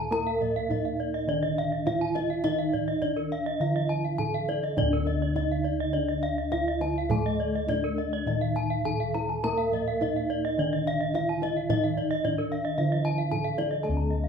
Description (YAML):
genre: Balinese gamelan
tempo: 103-115 BPM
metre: 4/4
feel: straight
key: D pelog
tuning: A4 = 440 Hz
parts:
  - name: gamelan-type bronze metallophone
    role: melody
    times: 0.0-14.3 s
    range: D4 to Bb4-40c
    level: -32 LUFS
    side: right 2 dB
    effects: none
  - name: gamelan-type bronze metallophone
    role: accompaniment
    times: 0.0-14.3 s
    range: D3 to Bb3-40c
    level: -36 LUFS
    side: left 2 dB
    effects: none
  - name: gamelan-type bronze metallophone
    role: arpeggios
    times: 0.0-14.2 s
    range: Bb4-40c to A5-45c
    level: -33 LUFS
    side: right 4 dB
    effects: none
  - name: gamelan-type bossed gongs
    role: bass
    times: 0.0-14.3 s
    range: D2 to Bb4-40c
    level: -31 LUFS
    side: equal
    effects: none
  - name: gamelan-type bronze metallophone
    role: arpeggios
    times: 0.1-14.3 s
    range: D5 to Bb5-40c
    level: -31 LUFS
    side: left 4 dB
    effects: none
  - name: kendang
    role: percussion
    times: 0.1-14.0 s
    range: none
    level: -34 LUFS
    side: right 3 dB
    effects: none
room: moderate large studio reverb, RT60 0.9 s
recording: band playing live in one room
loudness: -25 LUFS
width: side -6 dB against mid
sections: 0.0-13.8 A section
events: none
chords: none